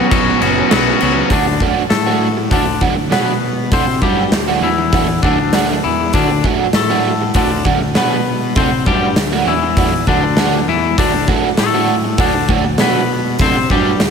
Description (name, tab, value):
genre	indie rock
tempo	99 BPM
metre	4/4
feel	straight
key	D major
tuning	A4 = 440 Hz
part	crunchy overdriven guitar	riff	0.0-13.9 s	B2 to F#4	-18 LUFS	right 6 dB	analog chorus, slapback echo
part	twangy electric guitar	riff	0.0-14.1 s	D3 to C5	-18 LUFS	left 9 dB	none
part	fuzz picked electric bass	bass	0.1-14.1 s	F#1 to C3	-20 LUFS	equal	overdrive
part	big rock drum kit	drums	0.1-14.1 s	crash cymbal, hi-hat, kick drum, snare drum	-17 LUFS	equal	none
room	moderate lush hall reverb, RT60 2.8 s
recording	big arena sound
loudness	-12 LUFS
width	side -6 dB against mid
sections	0.0-1.3 A section; 1.3-14.1 B section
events	none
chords	0.0 Bsus2; 1.3 D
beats	0.12 0.72 | 1.32 1.92 2.53 3.13 | 3.73 4.33 4.94 5.54 | 6.14 6.75 7.35 7.96 | 8.56 9.17 9.77 10.38 | 10.98 11.59 12.19 12.80 | 13.40 14.01